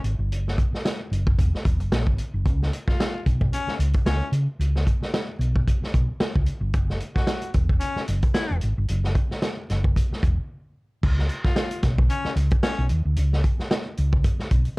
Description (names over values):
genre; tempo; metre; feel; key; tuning
funk; 112 BPM; 4/4; swing 56% on 16ths; unclear; A4 = 442 Hz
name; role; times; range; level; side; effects
hollow-body short-scale fingered electric bass; bass; 0.0-14.7 s; Fb1 to C#3; -23 LUFS; equal; none
vintage drum kit; drums; 0.0-14.8 s; crash cymbal, hi-hat, kick drum, snare drum; -23 LUFS; equal; none
breathy baritone saxophone; second line; 2.9-12.8 s; Db4 to Gb4; -30 LUFS; left 3 dB; none
room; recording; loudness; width
little or no reverb; dark, warm production; -21 LUFS; side -24 dB against mid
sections
0.0-11.0 A section; 11.0-14.8 B section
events
break 10.5-11.0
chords
0.0 Gb7sus2; 2.5 G(#11) (rootless); 6.7 N.C.